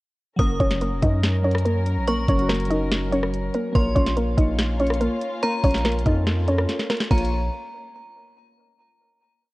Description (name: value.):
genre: hip hop, trap.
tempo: 143 BPM.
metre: 4/4.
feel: half-time.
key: Bb minor.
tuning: A4 = 441 Hz.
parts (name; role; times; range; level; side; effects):
soft round pluck; melody; 0.4-7.3 s; Bb3 to Eb5; -25 LUFS; equal; chorus.
metallic FM bell; second line; 0.4-7.3 s; Bb5 to Eb6; -31 LUFS; right 1 dB; chorus, ping-pong delay.
glassy digital keys; accompaniment; 0.4-7.3 s; Gb3 to Db5; -30 LUFS; equal; chorus.
dark symphonic string section; sustained chords; 0.4-7.3 s; Gb3 to Db5; -32 LUFS; equal; none.
hard-hitting 808-style bass; bass; 0.4-7.5 s; F1 to Gb2; -24 LUFS; equal; none.
trap drum kit; drums; 0.4-7.3 s; crash cymbal, hi-hat, kick drum, rim click, snare drum; -23 LUFS; equal; vintage 12-bit sampler grit.
room: light reverb.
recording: worn, warbling old tape, cassette tape, warbly pitch drift.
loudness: -19 LUFS.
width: side -20 dB against mid.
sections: 0.4-7.1 hook; 7.1-8.8 final chord.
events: drum fill 6.7-7.1.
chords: 0.4 Gb; 3.8 Bbm.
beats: | 0.39 0.81 1.23 1.65 | 2.07 2.49 2.91 3.33 | 3.75 4.17 4.59 5.01 | 5.43 5.85 6.27 6.69 | 7.11.